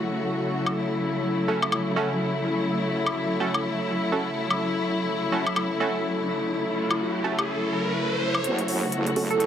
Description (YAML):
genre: bass house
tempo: 125 BPM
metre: 4/4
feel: swing 59% on 16ths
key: F# minor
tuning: A4 = 440 Hz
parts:
  - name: rich studio string section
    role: sustained chords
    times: 0.0-9.5 s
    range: C#3 to F#4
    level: -27 LUFS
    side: left 1 dB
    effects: none
  - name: airy breathy pad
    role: texture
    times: 0.0-9.5 s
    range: F#3 to C#5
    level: -29 LUFS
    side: left 1 dB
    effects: chorus
  - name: electronic woodblock and hi-hat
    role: drums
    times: 0.7-9.5 s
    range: none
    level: -27 LUFS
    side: left 2 dB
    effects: overdrive, high-pass filter on perc, high-pass filter on hats
  - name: band-passed chord stab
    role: stabs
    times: 1.5-9.3 s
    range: A3 to A4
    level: -30 LUFS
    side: right 3 dB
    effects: chorus, tape echo
  - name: riser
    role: sound effects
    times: 5.5-9.5 s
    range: none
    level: -31 LUFS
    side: right 1 dB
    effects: none
  - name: wobble bass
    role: bass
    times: 8.4-9.5 s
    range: F#1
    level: -30 LUFS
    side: right 2 dB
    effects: chorus, tube saturation, high-pass filter
  - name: glassy wavetable pluck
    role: melody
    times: 9.3-9.5 s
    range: A4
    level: -21 LUFS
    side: right 5 dB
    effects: chorus, cassette tape
room: moderate digital room reverb, RT60 1.2 s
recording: none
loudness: -23 LUFS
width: side -9 dB against mid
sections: 0.0-8.4 A section; 8.4-9.5 B section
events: riser 5.5-8.4, 8.4-9.5; build-up 8.4-9.5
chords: 0.0 F#m